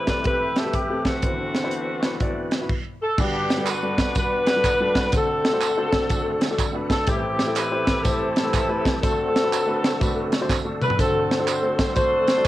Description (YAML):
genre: uptempo gospel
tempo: 123 BPM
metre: 4/4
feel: swing 65% on 8ths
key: unclear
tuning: A4 = 440 Hz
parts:
  - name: mellow saxophone section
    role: melody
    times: 0.0-12.5 s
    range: A3 to C5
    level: -23 LUFS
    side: left 1 dB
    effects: cassette tape, plate reverb
  - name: warm baby grand piano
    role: accompaniment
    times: 0.0-12.5 s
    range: G1 to D5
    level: -28 LUFS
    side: left 2 dB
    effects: cassette tape, plate reverb
  - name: bright tonewheel organ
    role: sustained chords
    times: 0.0-12.5 s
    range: D3 to F#5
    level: -31 LUFS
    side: right 3 dB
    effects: fast rotary speaker, chorus vibrato, cassette tape, plate reverb
  - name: crisp fusion drum kit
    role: drums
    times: 0.1-12.5 s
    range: crash cymbal, hi-hat, kick drum, snare drum, toms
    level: -24 LUFS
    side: equal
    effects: none
  - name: tambourine and handclaps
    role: percussion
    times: 3.2-12.5 s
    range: none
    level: -32 LUFS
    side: right 7 dB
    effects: none
room: moderate booth ambience, RT60 0.2 s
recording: home recording on cassette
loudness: -20 LUFS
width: side -15 dB against mid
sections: 0.0-3.2 A section; 3.2-12.5 B section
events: drum fill 10.5-11.0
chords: 0.0 Am9; 1.2 D13; 3.2 Gmaj7; 5.1 D7; 7.1 Am7; 9.0 D7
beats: 0.25 0.74 | 1.23 1.72 2.21 2.69 | 3.18 3.67 4.16 4.64 | 5.13 5.62 6.11 6.60 | 7.08 7.57 8.06 8.55 | 9.04 9.53 10.01 10.50 | 10.99 11.48 11.97 12.46